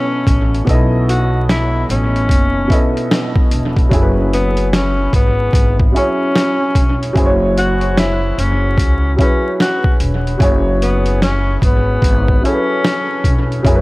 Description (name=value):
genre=lo-fi hip hop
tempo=74 BPM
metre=4/4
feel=swing 63% on 16ths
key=F# minor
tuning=A4 = 440 Hz
part: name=breathy tenor saxophone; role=melody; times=0.0-13.6 s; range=B3 to F#4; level=-19 LUFS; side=left 1 dB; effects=low-pass filter, analog delay
part: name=warm upright piano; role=accompaniment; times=0.0-13.8 s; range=B2 to D#5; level=-19 LUFS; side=equal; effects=cassette tape, low-pass filter, analog delay
part: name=upright bass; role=bass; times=0.3-13.8 s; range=E1 to C#2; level=-17 LUFS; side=equal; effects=none
part: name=boom bap sampler-style drum kit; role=drums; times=0.3-13.8 s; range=hi-hat, kick drum, snare drum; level=-15 LUFS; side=equal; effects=none
room=little or no reverb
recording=echo-heavy mix, vinyl crackle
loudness=-12 LUFS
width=side -21 dB against mid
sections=0.0-13.8 A section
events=none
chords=0.0 B9sus4; 3.9 F#9sus4